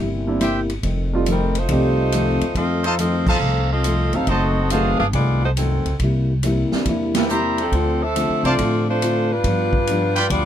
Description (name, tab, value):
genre	jazz, big band swing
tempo	139 BPM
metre	4/4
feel	swing 67% on 8ths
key	unclear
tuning	A4 = 439 Hz
part	fingerpicked steel-string acoustic guitar	accompaniment	0.0-10.5 s	F2 to F4	-24 LUFS	left 3 dB	none
part	upright bass	bass	0.0-10.5 s	F1 to A2	-22 LUFS	equal	none
part	warm grand piano	accompaniment	0.3-9.0 s	F3 to E5	-23 LUFS	right 3 dB	none
part	clear trumpet section	stabs	0.4-10.3 s	F4 to Bb5	-22 LUFS	equal	none
part	swinging big-band drum kit	drums	0.4-10.4 s	crash cymbal, hi-hat, kick drum, ride cymbal, snare drum	-27 LUFS	right 1 dB	none
part	clear saxophone section	melody	1.3-10.5 s	F3 to F5	-22 LUFS	equal	none
room	moderate booth ambience, RT60 0.2 s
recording	none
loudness	-17 LUFS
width	side -10 dB against mid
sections	0.0-10.5 A section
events	band accent 3.2, 7.1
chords	0.0 C7; 0.8 F7; 4.3 F#dim7; 6.0 C7; 7.7 Dm7; 9.4 G7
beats	0.40 | 0.83 1.26 1.69 2.12 | 2.55 2.98 3.41 3.85 | 4.28 4.71 5.14 5.57 | 6.00 6.43 6.86 7.29 | 7.72 8.15 8.58 9.01 | 9.44 9.87 10.30